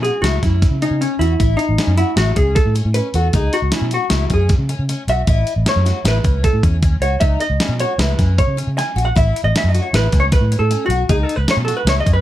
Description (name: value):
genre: progressive instrumental, band music in an uneven meter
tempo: 155 BPM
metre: 5/4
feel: straight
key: C# minor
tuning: A4 = 435 Hz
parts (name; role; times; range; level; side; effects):
- vintage hollow-body jazz guitar; melody; 0.0-12.2 s; C#4 to G#5; -20 LUFS; equal; none
- picked twelve-string acoustic guitar; arpeggios; 0.0-12.2 s; C#4 to F#4; -26 LUFS; left 5 dB; none
- vintage muted fingered electric bass; bass; 0.0-12.2 s; A1 to C#3; -17 LUFS; equal; none
- dusty soul sampler-style drum kit; drums; 0.0-12.2 s; hi-hat, kick drum, snare drum; -19 LUFS; equal; none
room: light reverb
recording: dark, warm production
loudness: -14 LUFS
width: side -13 dB against mid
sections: 0.0-12.2 A section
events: hollow-body jazz guitar solo 0.0-12.2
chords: 0.0 C#m; 1.4 A; 3.3 C#7(no3); 5.3 A; 7.2 C#7(no3); 9.2 A; 11.1 C#7(no3)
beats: 0.23 0.62 1.01 | 1.40 1.79 2.17 2.56 2.95 | 3.34 3.73 4.11 4.50 4.89 | 5.28 5.66 6.05 6.44 6.83 | 7.21 7.60 7.99 8.38 8.77 | 9.15 9.54 9.93 10.32 10.71 | 11.09 11.48 11.87